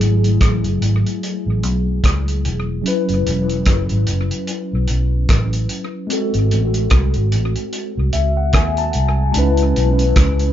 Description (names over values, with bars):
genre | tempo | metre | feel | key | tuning
lovers rock reggae | 74 BPM | 4/4 | swing 58% on 16ths | unclear | A4 = 442 Hz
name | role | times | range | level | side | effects
mellow tine electric piano | accompaniment | 0.0-10.5 s | F#3 to A5 | -21 LUFS | left 2 dB | medium stereo tremolo, tape echo
vintage muted fingered electric bass | bass | 0.0-10.5 s | E1 to D#2 | -17 LUFS | equal | none
cloth-damped thuddy drum kit | drums | 0.0-10.5 s | hi-hat, kick drum, rim click | -19 LUFS | equal | none
room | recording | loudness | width
moderate studio ambience, RT60 0.5 s | band playing live in one room, nothing above 7.5 kHz | -15 LUFS | side -11 dB against mid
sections
0.0-9.4 A section; 9.4-10.5 B section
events
tine electric piano fill 7.7-9.4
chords
0.0 F#m9; 6.1 G#7b9; 9.4 C#m7